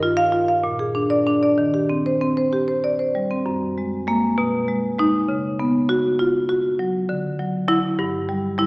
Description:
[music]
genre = classical, contemporary piece for solo marimba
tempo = 66 BPM (dotted quarters)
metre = 6/8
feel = straight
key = Eb major, F# major from 3.5 s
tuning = A4 = 440 Hz
[part]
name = marimba with medium hard mallets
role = solo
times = 0.0-8.7 s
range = F#2 to F5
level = -18 LUFS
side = equal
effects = none
[sound]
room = wet recital hall reverb, RT60 1.6 s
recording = recorded in a church or concert hall, small speaker sound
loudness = -18 LUFS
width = side -25 dB against mid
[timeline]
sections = 0.0-3.5 A section; 3.5-8.7 B section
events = none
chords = 0.0 Gm7; 0.6 Bb7; 1.6 Eb6; 3.5 F#add9; 4.4 B6; 5.3 C#7sus4; 7.1 Dadd9; 8.0 N.C.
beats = 0.63 | 1.57 2.52 | 3.46 4.38 | 5.29 6.19 | 7.08 7.99

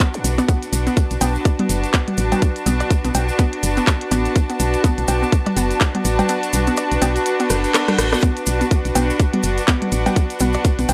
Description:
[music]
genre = minimal techno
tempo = 124 BPM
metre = 4/4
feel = swing 58% on 16ths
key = B minor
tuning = A4 = 443 Hz
[part]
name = hollow square pluck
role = riff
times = 0.0-10.8 s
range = B3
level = -27 LUFS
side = equal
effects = chorus, vintage 12-bit sampler grit, sidechain pumping, dub echo
[part]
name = electronic kick drum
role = drums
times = 0.0-10.8 s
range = none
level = -19 LUFS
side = equal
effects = overdrive
[part]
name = minimal click drum kit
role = drums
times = 0.0-10.9 s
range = handclaps, hi-hat, rim click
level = -26 LUFS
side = equal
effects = none
[part]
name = clear studio string section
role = texture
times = 0.0-10.9 s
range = D4 to A5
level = -24 LUFS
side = equal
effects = sidechain pumping
[part]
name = maracas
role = percussion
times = 0.1-10.9 s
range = none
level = -33 LUFS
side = equal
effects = none
[part]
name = zap and reverse cymbal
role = sound effects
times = 0.1-0.2, 7.5-8.2 s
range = none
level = -32 LUFS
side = equal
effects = none
[part]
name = woody FM bass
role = bass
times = 0.2-10.9 s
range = F#1 to B1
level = -23 LUFS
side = equal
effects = sidechain pumping
[part]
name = electronic cowbell and toms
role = percussion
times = 0.4-10.9 s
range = none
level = -26 LUFS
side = equal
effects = tape echo
[sound]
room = light reverb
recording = none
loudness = -18 LUFS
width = mono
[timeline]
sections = 0.0-10.9 A section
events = kick drops out 6.3-8.2; reverse cymbal 7.5-8.2; drum fill 7.5-8.2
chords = 0.0 Bm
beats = 0.00 | 0.49 0.97 1.45 1.94 | 2.42 2.90 3.39 3.87 | 4.36 4.84 5.33 5.81 | 6.29 6.78 7.26 7.74 | 8.23 8.71 9.20 9.68 | 10.16 10.65

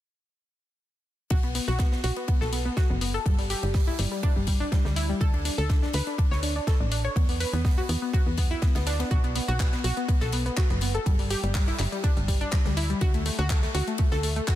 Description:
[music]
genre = progressive house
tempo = 123 BPM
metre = 4/4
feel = straight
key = B minor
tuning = A4 = 441 Hz
[part]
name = analog pluck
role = arpeggios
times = 1.3-14.6 s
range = G3 to C#5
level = -30 LUFS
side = left 1 dB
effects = chorus, sidechain pumping, dub echo
[part]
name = tight sequencer bass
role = bass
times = 1.3-14.4 s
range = F#1 to E2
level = -28 LUFS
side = equal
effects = sidechain pumping
[part]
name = electronic kick drum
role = drums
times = 1.3-14.6 s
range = none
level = -24 LUFS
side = equal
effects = none
[part]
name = huge arena drum kit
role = drums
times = 1.3-14.6 s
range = hi-hat, ride cymbal, snare drum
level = -39 LUFS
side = left 1 dB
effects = high-pass filter on cymbals, high-pass filter on hats, high-pass filter on snare, high-pass filter on room
[part]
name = deep house drum kit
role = drums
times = 1.6-14.6 s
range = handclaps, hi-hat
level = -34 LUFS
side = left 3 dB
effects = overdrive
[sound]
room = small room ambience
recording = dense, heavily limited modern master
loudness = -23 LUFS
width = side -13 dB against mid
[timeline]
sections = 1.3-14.6 A section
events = none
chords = 1.3 B5; 3.3 G5; 5.2 D5; 7.2 E5; 9.1 B5; 11.1 G5; 13.0 D5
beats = | 1.31 1.79 2.28 2.77 | 3.26 3.75 4.23 4.72 | 5.21 5.70 6.18 6.67 | 7.16 7.65 8.14 8.62 | 9.11 9.60 10.09 10.57 | 11.06 11.55 12.04 12.53 | 13.01 13.50 13.99 14.48

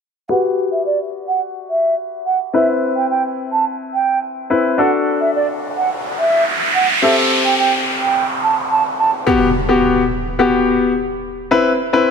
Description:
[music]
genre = pop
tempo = 107 BPM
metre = 4/4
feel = straight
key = G major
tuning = A4 = 441 Hz
[part]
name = mellow hollow silver concert flute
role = melody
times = 0.3-9.1 s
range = D5 to A5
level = -18 LUFS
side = right 3 dB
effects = low-pass filter, ping-pong delay
[part]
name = bright concert grand piano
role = accompaniment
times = 0.3-12.1 s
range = B3 to B4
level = -17 LUFS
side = left 3 dB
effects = low-pass filter
[part]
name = noise sweep and impact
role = sound effects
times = 5.4-11.5 s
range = none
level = -20 LUFS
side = right 1 dB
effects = none
[sound]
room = moderate lush hall reverb, RT60 2.6 s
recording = none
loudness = -14 LUFS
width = side -6 dB against mid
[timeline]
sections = 0.3-9.3 A section; 9.3-12.1 B section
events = filter sweep 0.3-9.3; noise sweep 5.4-9.3; impact 9.3-11.5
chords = 0.3 Gmaj7; 2.5 Cmaj7; 4.8 D; 7.0 Am7; 9.3 Gmaj7; 11.5 Cmaj7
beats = | 0.30 0.86 1.42 1.98 | 2.54 3.10 3.66 4.22 | 4.78 5.34 5.90 6.46 | 7.03 7.59 8.15 8.71 | 9.27 9.83 10.39 10.95 | 11.51 12.07

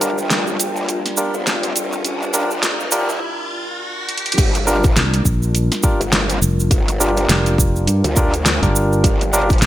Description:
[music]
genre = glitch hop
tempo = 103 BPM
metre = 4/4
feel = swing 58% on 16ths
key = G minor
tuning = A4 = 441 Hz
[part]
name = dark analog pad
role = sustained chords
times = 0.0-9.7 s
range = G3 to Bb4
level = -27 LUFS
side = left 2 dB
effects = chorus, sidechain pumping
[part]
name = barky tine electric piano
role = stabs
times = 0.0-9.5 s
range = D4 to Bb4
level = -22 LUFS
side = equal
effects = vintage 12-bit sampler grit, sidechain pumping, digital delay
[part]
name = growl bass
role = bass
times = 0.0-9.6 s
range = F1 to D2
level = -22 LUFS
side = equal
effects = chorus, tube saturation, high-pass filter
[part]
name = pop drum kit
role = drums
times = 0.0-9.7 s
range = crash cymbal, hi-hat, snare drum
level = -19 LUFS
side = equal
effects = gated reverb
[part]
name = cabasa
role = percussion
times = 0.0-9.7 s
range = none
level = -24 LUFS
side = right 4 dB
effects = none
[part]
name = riser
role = sound effects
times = 0.0-4.4 s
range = none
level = -27 LUFS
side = equal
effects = none
[part]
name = warbly tape-like pad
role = texture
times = 0.0-3.2 s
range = G4 to G5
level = -30 LUFS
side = right 2 dB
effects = chorus, built-in reverb, sidechain pumping
[part]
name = electronic kick drum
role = drums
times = 4.4-9.6 s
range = none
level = -17 LUFS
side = equal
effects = none
[part]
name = fingered electric bass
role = bass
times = 5.0-9.7 s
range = F1 to G2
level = -17 LUFS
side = equal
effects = none
[sound]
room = light reverb, digital ambience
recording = bright 1980s-style digital production, high-pass filter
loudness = -15 LUFS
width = side -14 dB against mid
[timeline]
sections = 0.0-4.4 A section; 4.4-9.7 B section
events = build-up 0.0-4.4; riser 0.0-4.4; break 3.2-4.4; drum fill 4.1; drop 4.4-9.7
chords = 0.0 Gm7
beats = 0.30 0.88 1.47 | 2.05 2.63 3.21 3.80 | 4.38 4.96 5.54 6.13 | 6.71 7.29 7.87 8.46 | 9.04 9.62

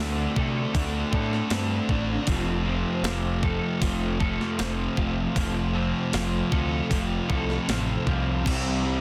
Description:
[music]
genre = rock, shoegaze and dream pop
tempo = 78 BPM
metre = 4/4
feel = straight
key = unclear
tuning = A4 = 440 Hz
[part]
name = electric guitar through a small old amp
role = arpeggios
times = 0.0-9.0 s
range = F3 to A4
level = -37 LUFS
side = equal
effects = ensemble chorus, digital delay
[part]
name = crunchy overdriven guitar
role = riff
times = 0.0-9.0 s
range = F2 to D4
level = -35 LUFS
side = equal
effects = spring reverb
[part]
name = overdriven electric guitar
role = riff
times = 0.0-9.0 s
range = C3 to F#4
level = -34 LUFS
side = equal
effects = reverse reverb
[part]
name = thick fuzz guitar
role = riff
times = 0.0-9.0 s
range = F2 to D4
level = -33 LUFS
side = equal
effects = distortion, subtle chorus
[part]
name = growling picked electric bass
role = bass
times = 0.0-9.0 s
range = F1 to C3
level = -32 LUFS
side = equal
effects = overdrive
[part]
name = crisp 8-bit digital drum machine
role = drums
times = 0.4-8.6 s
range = crash cymbal, hi-hat, kick drum, snare drum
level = -30 LUFS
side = equal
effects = none
[sound]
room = light reverb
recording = dense, heavily limited modern master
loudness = -26 LUFS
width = mono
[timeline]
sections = 0.0-9.0 A section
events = none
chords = 0.0 D7sus4; 2.3 F; 8.4 C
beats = 0.75 1.52 | 2.29 3.05 3.82 4.59 | 5.36 6.13 6.90 7.67 | 8.45

